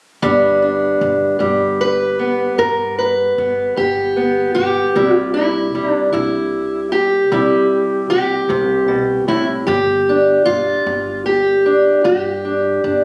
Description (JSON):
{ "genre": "acoustic country blues, solo or duo", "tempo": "51 BPM (dotted quarters)", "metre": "12/8", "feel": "straight", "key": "G major", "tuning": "A4 = 440 Hz", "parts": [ { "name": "fingerpicked steel-string acoustic guitar", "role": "melody", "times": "0.2-13.0 s", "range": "G2 to B4", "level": "-16 LUFS", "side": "equal", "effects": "none" }, { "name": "upright bass", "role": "bass", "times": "0.2-13.0 s", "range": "G1 to C3", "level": "-29 LUFS", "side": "equal", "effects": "none" } ], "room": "moderate small room reverb, RT60 0.5 s", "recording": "recorded on a phone in the room, studio reverb, compression", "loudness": "-16 LUFS", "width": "mono", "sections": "0.2-13.0 A section", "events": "none", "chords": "0.2 G; 5.0 C; 9.7 G5" }